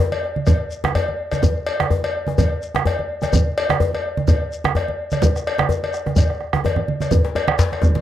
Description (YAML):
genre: west african traditional, West African drum ensemble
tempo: 126 BPM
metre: 4/4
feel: swing 54% on 16ths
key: none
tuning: none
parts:
  - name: congas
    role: percussion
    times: 0.1-8.0 s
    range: none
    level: -23 LUFS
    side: right 4 dB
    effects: none
  - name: cowbell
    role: percussion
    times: 0.1-7.8 s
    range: none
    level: -24 LUFS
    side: left 3 dB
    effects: none
  - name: djembe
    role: percussion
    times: 0.2-8.0 s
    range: none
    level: -22 LUFS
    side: left 3 dB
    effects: none
  - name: bombo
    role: percussion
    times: 0.5-7.9 s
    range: none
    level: -19 LUFS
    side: right 2 dB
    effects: none
  - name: shekere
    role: percussion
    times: 0.5-7.9 s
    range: none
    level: -25 LUFS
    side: left 1 dB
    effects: none
room: light reverb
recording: dry, close 1970s-style studio recording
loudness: -17 LUFS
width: side -12 dB against mid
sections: 0.0-7.1 A section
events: drum fill 6.7-7.1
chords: none